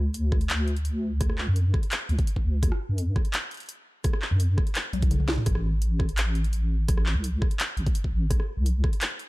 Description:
half-time drum and bass; 169 BPM; 4/4; half-time; A4 = 437 Hz
deep soft wobble bass; bass; 0.0-8.8 s; A1 to F#2; -24 LUFS; equal; chorus
drum and bass drum kit; drums; 0.1-9.3 s; handclaps, hi-hat, rim click, snare drum, toms; -31 LUFS; equal; overdrive
electronic kick drum; drums; 0.3-8.9 s; -25 LUFS; equal; overdrive
little or no reverb; dark, warm production; -23 LUFS; side -20 dB against mid
0.0-9.3 A section
drum fill 4.9-5.5; kick drops out 5.1-5.5
0.14 0.49 0.85 | 1.20 1.56 1.91 2.27 | 2.62 2.98 3.33 3.69 | 4.04 4.40 4.75 5.11 | 5.46 5.82 6.17 6.53 | 6.88 7.24 7.59 7.95 | 8.30 8.66 9.02

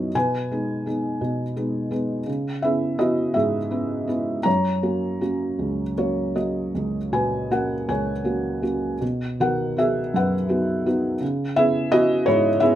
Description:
classical, lyrical solo piano; 52-58 BPM (dotted quarters); 6/8; rubato; A4 = 442 Hz
felt-muted upright piano; solo; 0.0-12.8 s; C#2 to A#5; -20 LUFS; equal
moderate studio reverb, RT60 0.6 s; -21 LUFS; side -12 dB against mid
0.0-12.8 A section
felt piano fill 5.6-6.7
0.1 G#m/B; 2.3 C#m7; 4.5 F#; 9.0 B; 11.2 C#m7
| 0.15 1.22 | 2.27 3.35 | 4.46 5.60 | 6.75 7.88 | 9.02 10.14 | 11.22 12.27

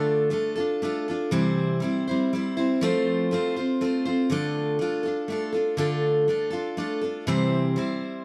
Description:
rock; 121 BPM; 3/4; straight; D minor; A4 = 440 Hz
picked steel-string acoustic guitar; solo; 0.0-8.2 s; C3 to C5; -25 LUFS; equal; analog delay
moderate studio reverb, RT60 0.6 s; dark, warm production; -25 LUFS; mono
0.0-4.3 A section; 4.3-8.2 B section
0.0 Dm; 1.3 C; 2.8 F; 4.3 Dm; 7.3 C
0.33 0.82 | 1.32 1.81 2.31 | 2.80 3.30 3.79 | 4.29 4.79 5.28 | 5.78 6.28 6.77 | 7.27 7.77

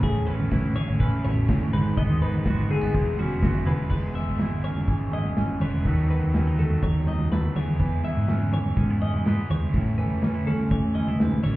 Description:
math rock and midwest emo; 124 BPM; 4/4; straight; E major; A4 = 440 Hz
twangy electric guitar; accompaniment; 0.0-11.6 s; E2 to B4; -31 LUFS; right 2 dB
twelve-string electric guitar; arpeggios; 0.0-11.6 s; F#4 to E5; -35 LUFS; left 4 dB
cranked stack guitar; riff; 0.0-11.6 s; G#2 to A4; -30 LUFS; equal; overdrive
hollow-body short-scale fingered electric bass; bass; 0.0-11.6 s; E1 to E3; -26 LUFS; equal
modern studio drum kit; drums; 0.0-11.5 s; crash cymbal, kick drum, snare drum, toms; -26 LUFS; equal
light reverb; heard muffled through a wall, club ambience, EQ; -21 LUFS; side -17 dB against mid
0.0-3.9 A section; 3.9-11.6 B section
0.0 Amaj7; 1.7 G#m7; 2.9 E69; 3.9 E6; 5.9 B7/D#; 7.6 E6; 9.7 Amaj7
| 0.03 0.51 1.00 1.48 | 1.97 2.45 2.94 3.42 | 3.91 4.39 4.88 5.37 | 5.85 6.34 6.82 7.31 | 7.80 8.28 8.77 9.25 | 9.74 10.22 10.71 11.20

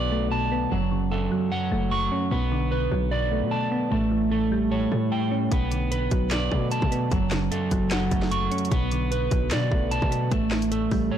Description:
hip hop, trap; 150 BPM; 4/4; half-time; B minor; A4 = 440 Hz
soft electric-piano-like synth keys; accompaniment; 0.0-11.2 s; F#2 to C#4; -28 LUFS; left 3 dB; chorus, low-pass filter
electric guitar at the edge of break-up; arpeggios; 0.0-11.2 s; F#3 to C#6; -26 LUFS; right 4 dB; low-pass filter, ping-pong delay
hard-hitting 808-style bass; bass; 0.0-11.1 s; F#1 to B2; -28 LUFS; equal
trap drum kit; drums; 5.5-11.0 s; handclaps, hi-hat, kick drum, snare drum; -27 LUFS; equal; overdrive
light reverb, digital ambience; blown-out, overdriven recording, overdrive; -22 LUFS; side -9 dB against mid
0.0-11.2 A section
0.0 Bm7; 0.7 F#m; 2.3 Bm7; 3.9 A7; 5.5 Bm7; 7.1 F#m; 8.7 Bm7; 10.3 A7(no3)
0.32 | 0.72 1.12 1.52 1.92 | 2.32 2.72 3.12 3.52 | 3.92 4.32 4.72 5.12 | 5.52 5.92 6.32 6.72 | 7.12 7.52 7.92 8.32 | 8.72 9.12 9.52 9.92 | 10.32 10.72 11.12

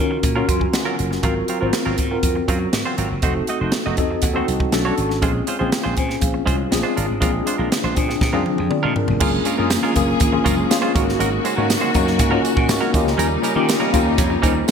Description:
polished 1980s jazz-funk pop; 120 BPM; 4/4; straight; Eb dorian; A4 = 438 Hz
tine electric piano; accompaniment; 0.0-14.7 s; Bb3 to C6; -21 LUFS; left 3 dB; overdrive, fast stereo tremolo, lush chorus
semi-hollow electric guitar; riff; 0.0-14.7 s; Gb3 to Eb5; -25 LUFS; right 5 dB; wide subtle chorus
slap bass; bass; 0.0-14.6 s; F1 to Eb3; -24 LUFS; equal
crisp fusion drum kit; drums; 0.2-14.7 s; crash cymbal, hi-hat, kick drum, snare drum, toms; -22 LUFS; right 1 dB; gated reverb
clear studio string section; sustained chords; 9.2-14.7 s; Db3 to Ab4; -26 LUFS; left 2 dB
tambourine; percussion; 9.2-14.7 s; -35 LUFS; right 11 dB
moderate plate reverb, RT60 1.6 s, small room ambience; bright 1980s-style digital production; -17 LUFS; side -6 dB against mid
0.0-9.2 A section; 9.2-14.7 B section
tine electric piano fill 0.2-1.2, 3.7-5.2, 11.7-13.2; drum fill 8.2-9.2
0.0 Ebm9; 1.2 Ab13; 3.2 F7b9; 4.7 Bm9; 5.2 Bbm9; 6.7 Bb7; 9.2 Gbmaj9; 11.0 Ab9sus4; 12.9 Eb7
0.24 0.74 | 1.24 1.73 2.23 2.73 | 3.23 3.73 4.23 4.73 | 5.23 5.72 6.22 6.72 | 7.22 7.72 8.22 8.71 | 9.21 9.71 10.21 10.71 | 11.20 11.70 12.20 12.70 | 13.19 13.69 14.19 14.69

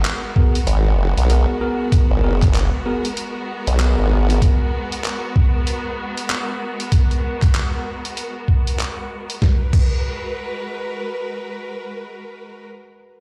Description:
glitch hop; 96 BPM; 4/4; swing 61% on 16ths; G# minor; A4 = 442 Hz
bright studio string section; sustained chords; 0.0-12.7 s; G#3 to B4; -30 LUFS; equal; sidechain pumping, low-pass filter
formant-sweep wobble bass; bass; 0.0-4.4 s; F#1 to B1; -18 LUFS; equal; chorus
boom bap sampler-style drum kit; drums; 0.0-9.9 s; crash cymbal, handclaps, hi-hat, snare drum; -30 LUFS; equal; small room ambience
bell-like tine electric piano; stabs; 0.4-4.7 s; B3 to A#4; -27 LUFS; equal; vintage 12-bit sampler grit, sidechain pumping, tape echo
electronic kick drum; drums; 0.4-9.9 s; -17 LUFS; equal; small room ambience
light reverb; played on a big sound system in a bare room, large studio reverb; -19 LUFS; mono
0.0-9.4 A section; 9.4-11.9 B section
0.0 G#m9
0.04 0.67 1.29 | 1.92 2.54 3.17 3.79 | 4.42 5.04 5.67 6.29 | 6.92 7.54 8.17 8.79 | 9.42 10.04 10.67 11.29

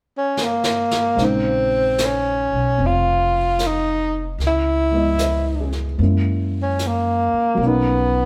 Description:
jazz ballad; 75 BPM; 4/4; swing 68% on 8ths; Bb minor; A4 = 440 Hz
breathy tenor saxophone; melody; 0.2-8.3 s; Bb3 to F4; -21 LUFS; equal
jazz brush drum kit; drums; 0.4-8.3 s; brushed snare drum, hi-hat, snare drum; -30 LUFS; equal
dark baby grand piano; accompaniment; 1.2-8.3 s; Db3 to Eb5; -27 LUFS; equal
upright bass; bass; 1.2-8.3 s; F1 to Gb2; -25 LUFS; equal
moderate stone room reverb, RT60 1.3 s; band playing live in one room; -19 LUFS; mono
0.0-1.2 A section; 1.2-8.3 B section
drum fill 0.4-1.2
0.0 N.C.; 1.2 Bbm11; 4.4 Dbm7; 6.0 Gb9; 7.6 Bmaj9
0.38 | 1.18 1.98 2.79 3.59 | 4.39 5.19 5.99 6.79 | 7.59

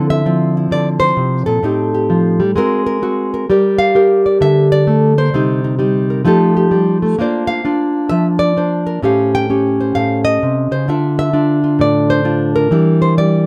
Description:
solo jazz; 130 BPM; 4/4; swing 66% on 8ths; D minor; A4 = 440 Hz
nylon-string guitar; solo; 0.0-13.5 s; A2 to G5; -14 LUFS; equal
little or no reverb; close, detailed microphones; -14 LUFS; mono
0.0-13.5 A section
0.0 Dm9; 1.6 Am7b5; 2.6 G#9; 3.5 Gm9; 5.3 Cm7; 6.2 F9; 7.2 Bbadd9; 9.0 A7alt; 10.9 Dm9; 12.7 Em7b5
0.25 0.71 1.17 | 1.63 2.09 2.56 3.02 | 3.48 3.94 4.40 4.87 | 5.33 5.79 6.25 6.71 | 7.17 7.63 8.10 8.56 | 9.02 9.48 9.94 10.40 | 10.86 11.32 11.79 12.25 | 12.71 13.17

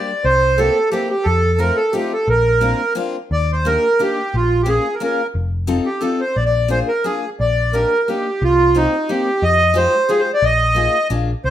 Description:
musette waltz; 177 BPM; 3/4; swing 55% on 8ths; Bb major, Eb major from 3.3 s; A4 = 440 Hz
accordion; melody; 0.0-11.5 s; Eb4 to Eb5; -16 LUFS; right 1 dB; plate reverb
picked steel-string acoustic guitar; accompaniment; 0.0-11.3 s; Ab3 to A4; -24 LUFS; left 4 dB
hollow-body short-scale picked electric bass; bass; 0.2-11.5 s; F1 to F2; -19 LUFS; left 1 dB
wet studio reverb, RT60 0.6 s; rough home demo mix; -15 LUFS; side -11 dB against mid
0.0-3.3 A section; 3.3-11.5 B section
0.2 C7; 1.3 F7; 2.3 Bbadd9; 3.3 Ebmaj7; 4.3 Bbm7; 5.4 F7; 6.4 Bb7; 7.4 Ebmaj7/Bb; 8.4 Cm7; 9.4 Fm9; 10.4 Bb7sus4; 11.1 Bb7
| 0.24 0.58 0.92 | 1.26 1.60 1.94 | 2.27 2.62 2.96 | 3.31 3.66 4.00 | 4.34 4.68 5.01 | 5.35 5.69 6.03 | 6.37 6.71 7.05 | 7.39 7.74 8.08 | 8.42 8.75 9.09 | 9.43 9.76 10.10 | 10.43 10.77 11.11 | 11.45

